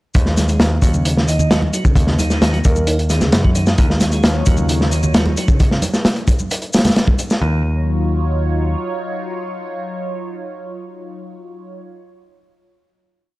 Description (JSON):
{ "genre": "breakbeat, breaks", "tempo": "132 BPM", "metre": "4/4", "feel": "straight", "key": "Eb minor", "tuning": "A4 = 440 Hz", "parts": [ { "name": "tonewheel organ", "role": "riff", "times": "0.1-7.6 s", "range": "Db3 to Eb4", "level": "-24 LUFS", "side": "equal", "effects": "stopped rotary speaker, vintage 12-bit sampler grit, low-pass filter" }, { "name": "picked electric bass", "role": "bass", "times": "0.1-8.7 s", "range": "Eb2 to Gb2", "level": "-18 LUFS", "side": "equal", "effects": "none" }, { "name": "crunchy breakbeat drum kit", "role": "drums", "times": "0.1-7.4 s", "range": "hi-hat, kick drum, snare drum", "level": "-15 LUFS", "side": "equal", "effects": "none" }, { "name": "shaker", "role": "drums", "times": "0.1-7.4 s", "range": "none", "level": "-30 LUFS", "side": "left 3 dB", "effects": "overdrive" }, { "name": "congas", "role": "percussion", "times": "0.4-7.2 s", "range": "none", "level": "-26 LUFS", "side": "right 2 dB", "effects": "none" }, { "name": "vibraphone with soft mallets", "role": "melody", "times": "1.3-3.3 s", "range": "Ab4 to Eb5", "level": "-25 LUFS", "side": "right 1 dB", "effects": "telephone sound, analog delay" }, { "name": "phased analog pad", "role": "sustained chords", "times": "3.8-11.8 s", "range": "Gb3 to Db5", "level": "-26 LUFS", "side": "left 1 dB", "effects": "phaser, chorus, sidechain pumping" } ], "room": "small room ambience", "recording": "dry, gritty hardware recording, transformer saturation, cassette tape", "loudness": "-14 LUFS", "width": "side -19 dB against mid", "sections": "0.1-7.4 groove; 7.4-11.1 final chord", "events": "filter sweep on tonewheel organ 0.1-5.6", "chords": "0.1 Ebm9" }